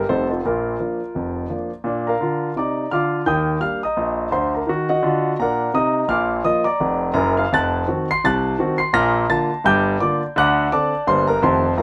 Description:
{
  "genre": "jazz, stride piano",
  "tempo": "169 BPM",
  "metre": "4/4",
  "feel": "swing 60% on 8ths",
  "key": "Bb major",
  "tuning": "A4 = 441 Hz",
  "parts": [
    { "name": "warm concert grand piano", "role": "solo", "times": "0.0-11.8 s", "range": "F1 to C7", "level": "-20 LUFS", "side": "equal", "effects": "none" }
  ],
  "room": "moderate club reverb, RT60 0.6 s",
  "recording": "none",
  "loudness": "-20 LUFS",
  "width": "mono",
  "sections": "0.0-1.8 A section; 1.8-11.8 A section",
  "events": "none",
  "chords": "0.1 F9; 0.4 Bb; 3.3 Ebmaj7; 4.7 Ebm; 6.1 Bb; 7.5 F7b9; 8.9 Bb; 9.6 Gm7; 10.4 D7; 11.1 Gm; 11.4 F9",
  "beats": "0.08 | 0.43 0.79 1.14 1.49 | 1.85 2.20 2.56 2.91 | 3.26 3.62 3.97 4.33 | 4.68 5.03 5.39 5.74 | 6.10 6.45 6.81 7.16 | 7.52 7.87 8.23 8.58 | 8.94 9.29 9.65 10.00 | 10.36 10.71 11.07 11.42 | 11.78"
}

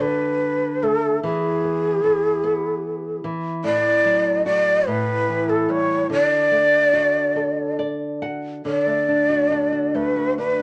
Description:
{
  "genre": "children's music, lullaby",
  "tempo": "48 BPM (dotted quarters)",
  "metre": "6/8",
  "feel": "uneven beats, rubato",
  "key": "D major pentatonic",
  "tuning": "A4 = 440 Hz",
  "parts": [
    { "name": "breathy mellow shakuhachi", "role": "melody", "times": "0.0-10.6 s", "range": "G#4 to D5", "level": "-21 LUFS", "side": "equal", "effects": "none" },
    { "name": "nylon-string guitar", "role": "accompaniment", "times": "0.0-10.6 s", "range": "A2 to F#5", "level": "-27 LUFS", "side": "equal", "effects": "none" }
  ],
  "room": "moderate studio reverb, RT60 0.6 s",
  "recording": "none",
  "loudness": "-21 LUFS",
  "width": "mono",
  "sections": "0.0-8.7 A section; 8.7-10.6 A section",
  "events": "nylon-string guitar fill 7.4-8.7",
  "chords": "0.0 D; 1.2 E; 3.6 D/A; 4.9 A5; 6.1 D",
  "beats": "0.00 | 1.23 2.43 | 3.65 4.88 | 6.11 7.37 | 8.65 9.95"
}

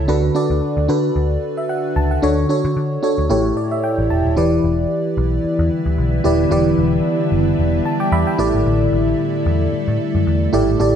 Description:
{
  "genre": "pop",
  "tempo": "112 BPM",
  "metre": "4/4",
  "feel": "swing 55% on 16ths",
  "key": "unclear",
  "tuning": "A4 = 440 Hz",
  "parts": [
    { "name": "FM electric piano with soft pad layer", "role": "accompaniment", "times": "0.0-11.0 s", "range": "A2 to D6", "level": "-18 LUFS", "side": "equal", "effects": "chorus" },
    { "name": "vintage muted picked electric bass", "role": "bass", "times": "0.0-11.0 s", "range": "Eb1 to D3", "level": "-19 LUFS", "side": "equal", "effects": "none" },
    { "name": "ethereal airy pad", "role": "sustained chords", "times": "5.4-11.0 s", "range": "D3 to E4", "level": "-22 LUFS", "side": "left 1 dB", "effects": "ensemble chorus, built-in reverb, phaser" }
  ],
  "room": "wet recital hall reverb, RT60 1.5 s",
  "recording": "dark, warm production",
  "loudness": "-15 LUFS",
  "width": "side -8 dB against mid",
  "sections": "0.0-4.4 A section; 4.4-11.0 B section",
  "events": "FM electric piano fill 3.3-4.4, 7.6-8.7",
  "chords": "0.1 Bm7/D; 2.2 Dmaj7; 3.3 A7; 4.4 Em7; 8.4 A7sus4",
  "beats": "| 0.09 0.62 1.16 1.70 | 2.23 2.77 3.30 3.84 | 4.37 4.91 5.45 5.98 | 6.52 7.05 7.59 8.12 | 8.66 9.20 9.73 10.27 | 10.80"
}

